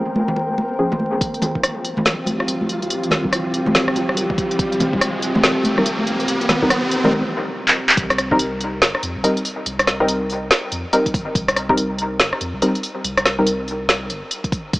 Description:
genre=deep dubstep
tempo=142 BPM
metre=4/4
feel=swing 62% on 16ths, half-time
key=C minor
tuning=A4 = 440 Hz
part: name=deep dark ambient pad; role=sustained chords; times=0.0-8.0 s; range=C4 to G5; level=-24 LUFS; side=equal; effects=chorus, built-in reverb, vintage 12-bit sampler grit
part: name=filtered dub chord stab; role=stabs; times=0.0-14.3 s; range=F3 to Bb4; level=-22 LUFS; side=equal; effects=chorus, dub echo
part: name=flickering grainy texture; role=texture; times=0.0-7.1 s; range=F3 to Bb4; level=-28 LUFS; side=equal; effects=built-in reverb
part: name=congas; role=percussion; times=0.2-7.1 s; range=none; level=-24 LUFS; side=equal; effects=dub echo
part: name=deep house drum kit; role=drums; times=1.2-14.8 s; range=handclaps, hi-hat, rim click, snare drum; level=-19 LUFS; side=equal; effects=none
part: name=electronic kick drum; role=drums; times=1.2-8.4, 11.1-11.8, 14.4-14.8 s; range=none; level=-24 LUFS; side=equal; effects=none
part: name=riser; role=sound effects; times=3.4-7.1 s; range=none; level=-26 LUFS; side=right 1 dB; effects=none
part: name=soft dub sub bass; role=bass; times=8.0-14.8 s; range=G1 to F2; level=-30 LUFS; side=equal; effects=tube saturation
room=light reverb, digital ambience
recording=vinyl crackle, small speaker sound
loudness=-17 LUFS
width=side -20 dB against mid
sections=0.0-1.2 A section; 1.2-8.0 B section; 8.0-14.8 C section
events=build-up 1.2-8.0; filter sweep on synth stab 1.2-8.0; riser 3.4-7.1; drum fill 7.7-8.0; drop 8.0-14.8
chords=0.0 Bbm7; 1.2 Cm7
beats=0.37 0.79 | 1.21 1.64 2.06 2.48 | 2.90 3.33 3.75 4.17 | 4.59 5.02 5.44 5.86 | 6.28 6.71 7.13 7.55 | 7.97 8.40 8.82 9.24 | 9.66 10.09 10.51 10.93 | 11.35 11.78 12.20 12.62 | 13.04 13.47 13.89 14.31 | 14.73

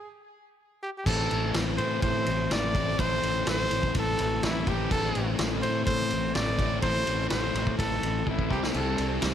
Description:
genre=classic rock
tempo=125 BPM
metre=4/4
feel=straight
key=A minor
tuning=A4 = 441 Hz
part: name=warm trumpet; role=melody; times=0.0-9.2 s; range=E4 to D5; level=-30 LUFS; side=right 1 dB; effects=none
part: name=crunchy overdriven guitar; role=riff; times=1.1-9.3 s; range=A2 to E4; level=-32 LUFS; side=left 12 dB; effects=none
part: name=distorted electric guitar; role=riff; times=1.1-9.3 s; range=A2 to A4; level=-36 LUFS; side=right 13 dB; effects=distortion
part: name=fuzz fingered electric bass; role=bass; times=1.1-9.3 s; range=A1 to A2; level=-31 LUFS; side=right 1 dB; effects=overdrive
part: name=vintage drum kit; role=drums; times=1.1-9.3 s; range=crash cymbal, kick drum, ride cymbal, snare drum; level=-30 LUFS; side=equal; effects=none
part: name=string machine, full ensemble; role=sustained chords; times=8.7-9.3 s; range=G3 to C5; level=-38 LUFS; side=equal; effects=none
room=little or no reverb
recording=none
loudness=-24 LUFS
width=side -9 dB against mid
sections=0.0-1.1 A section; 1.1-9.3 B section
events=stop 0.0-1.1; drum fill 8.3-8.7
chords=0.0 N.C.; 1.1 Am; 8.5 C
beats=0.11 0.59 | 1.07 1.55 2.03 2.52 | 3.00 3.48 3.96 4.44 | 4.92 5.39 5.87 6.35 | 6.83 7.31 7.79 8.27 | 8.75 9.23

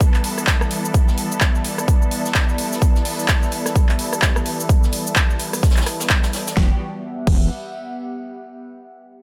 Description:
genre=bass house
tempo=128 BPM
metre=4/4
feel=swing 59% on 16ths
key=E minor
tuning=A4 = 440 Hz
part: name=bright symphonic string section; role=sustained chords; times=0.0-6.8 s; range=E3 to A4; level=-31 LUFS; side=equal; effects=sidechain pumping, low-pass filter
part: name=big-room dance drum kit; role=drums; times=0.0-7.4 s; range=crash cymbal, handclaps, hi-hat, rim click, shaker, snare drum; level=-25 LUFS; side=equal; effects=overdrive
part: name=electronic kick drum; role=drums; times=0.0-7.4 s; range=none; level=-19 LUFS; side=equal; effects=overdrive
part: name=jazz brush drum kit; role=drums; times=0.0-6.6 s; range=hi-hat, shaker, snare drum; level=-35 LUFS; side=equal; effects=none
part: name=warbly tape-like pad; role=texture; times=0.0-8.4 s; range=G3 to A5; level=-30 LUFS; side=equal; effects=chorus, built-in reverb, phaser, sidechain pumping
part: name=metallic wobble bass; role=bass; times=6.6-7.5 s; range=E1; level=-24 LUFS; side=equal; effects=chorus, tube saturation, sidechain pumping
room=light reverb, small room reverb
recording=none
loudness=-19 LUFS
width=mono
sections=0.0-6.6 A section; 6.6-8.4 B section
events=filter sweep on string section 0.0-6.6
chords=0.0 Em; 6.6 Emadd9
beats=0.01 0.47 | 0.94 1.41 1.88 2.35 | 2.82 3.29 3.75 4.22 | 4.69 5.16 5.63 6.10 | 6.57 7.04 7.50 7.97

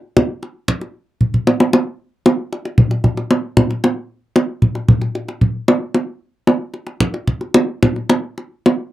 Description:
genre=gamelan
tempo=114 BPM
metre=4/4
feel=straight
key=none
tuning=none
part: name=kendang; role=percussion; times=0.2-8.8 s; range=none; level=-14 LUFS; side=equal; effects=none
room=light reverb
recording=dry, close 1970s-style studio recording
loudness=-15 LUFS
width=side -15 dB against mid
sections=0.0-1.7 A section; 1.7-8.9 B section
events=drum fill 1.2-1.7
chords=none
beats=0.17 0.69 1.21 | 1.73 2.26 2.78 3.31 | 3.83 4.36 4.88 5.41 | 5.93 6.46 7.00 7.54 | 8.09 8.65

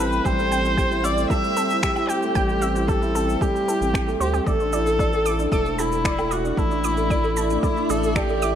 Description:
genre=piano and strings electronica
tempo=114 BPM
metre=4/4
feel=straight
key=unclear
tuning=A4 = 442 Hz
part: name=warm viola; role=melody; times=0.0-8.6 s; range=E4 to E5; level=-24 LUFS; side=left 1 dB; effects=none
part: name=granular cloud pad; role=sustained chords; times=0.0-8.6 s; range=A2 to G5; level=-31 LUFS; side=equal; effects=built-in reverb, sidechain pumping
part: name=analog pluck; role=arpeggios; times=0.0-8.5 s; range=G4 to D6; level=-31 LUFS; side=right 4 dB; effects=chorus, sidechain pumping, ping-pong delay
part: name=felt-muted upright piano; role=riff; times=0.0-8.6 s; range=G3 to D5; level=-25 LUFS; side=right 1 dB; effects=none
part: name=round analog bass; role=bass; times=0.0-8.6 s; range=E1 to D2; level=-27 LUFS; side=equal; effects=sidechain pumping
part: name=electronic shaker, finger snaps and woodblock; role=drums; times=0.1-8.5 s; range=none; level=-32 LUFS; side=equal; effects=none
part: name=electronic kick drum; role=drums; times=0.2-8.3 s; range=none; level=-24 LUFS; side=equal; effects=none
room=moderate lush hall reverb, RT60 1.8 s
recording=none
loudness=-19 LUFS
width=side -9 dB against mid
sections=0.0-8.6 A section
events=none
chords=0.0 Am7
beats=| 0.26 0.79 1.31 1.84 | 2.37 2.89 3.42 3.95 | 4.47 5.00 5.53 6.05 | 6.58 7.10 7.63 8.16

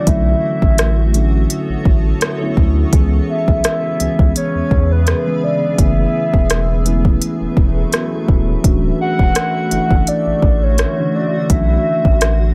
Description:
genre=contemporary R&B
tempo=84 BPM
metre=4/4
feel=swing 54% on 16ths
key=F# minor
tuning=A4 = 440 Hz
part: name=soft octave-layered synth lead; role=melody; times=0.0-12.5 s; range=B4 to F#5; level=-22 LUFS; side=equal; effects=chorus, phaser, tape echo
part: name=mellow tine electric piano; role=accompaniment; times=0.0-12.5 s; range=D3 to B5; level=-22 LUFS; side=equal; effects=phaser
part: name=granular cloud pad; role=sustained chords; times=0.0-12.5 s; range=C#3 to E5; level=-29 LUFS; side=equal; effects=built-in reverb, sidechain pumping
part: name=saturated sub bass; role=bass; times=0.1-12.5 s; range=D1 to E2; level=-19 LUFS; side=equal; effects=none
part: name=smooth R&B drum kit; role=drums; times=0.1-12.4 s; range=hi-hat, kick drum, rim click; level=-17 LUFS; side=equal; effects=none
room=digital ambience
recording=none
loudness=-15 LUFS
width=mono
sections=0.0-12.5 A section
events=tine electric piano fill 7.6-8.6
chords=0.1 Bm11; 2.9 C#m7; 5.8 F#m11; 8.6 Dmaj9; 11.5 Bm11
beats=| 0.07 0.78 1.50 2.21 | 2.93 3.64 4.36 5.07 | 5.78 6.50 7.21 7.93 | 8.64 9.36 10.07 10.78 | 11.50 12.21

